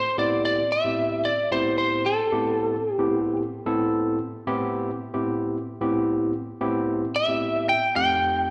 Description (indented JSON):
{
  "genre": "blues",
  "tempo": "112 BPM",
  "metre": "4/4",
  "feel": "straight",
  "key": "A minor",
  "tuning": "A4 = 439 Hz",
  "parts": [
    { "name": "lightly driven lead guitar", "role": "melody", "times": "0.0-3.4, 7.2-8.5 s", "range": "A4 to G5", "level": "-25 LUFS", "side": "equal", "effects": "slapback echo, analog delay" },
    { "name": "overdriven tine electric piano", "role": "accompaniment", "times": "0.2-8.5 s", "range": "F2 to A4", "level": "-28 LUFS", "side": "equal", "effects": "slapback echo" }
  ],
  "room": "light reverb, digital ambience",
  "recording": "live gig heard through the venue's PA, recital hall reverb",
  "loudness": "-24 LUFS",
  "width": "mono",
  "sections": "0.0-8.5 A section",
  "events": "none",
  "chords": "0.0 Am7; 8.0 F7"
}